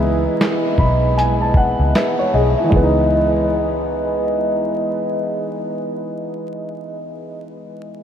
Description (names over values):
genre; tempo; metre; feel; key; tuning
lo-fi hip hop; 77 BPM; 4/4; swing 61% on 16ths; C# minor; A4 = 441 Hz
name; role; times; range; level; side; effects
dark upright piano; accompaniment; 0.0-8.0 s; E3 to B5; -18 LUFS; equal; cassette tape
vintage muted fingered electric bass; bass; 0.0-5.9 s; B1 to C#2; -20 LUFS; equal; none
lo-fi sampler-style drum kit; drums; 0.4-2.9 s; handclaps, hi-hat, kick drum, snare drum; -21 LUFS; equal; none
room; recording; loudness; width
moderate huge ambient reverb, RT60 8.0 s; dreamy mix soaked in reverb, vinyl crackle; -15 LUFS; side -9 dB against mid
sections
0.0-2.7 A section; 2.7-5.8 B section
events
upright piano fill 0.4-2.7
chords
0.0 C#m9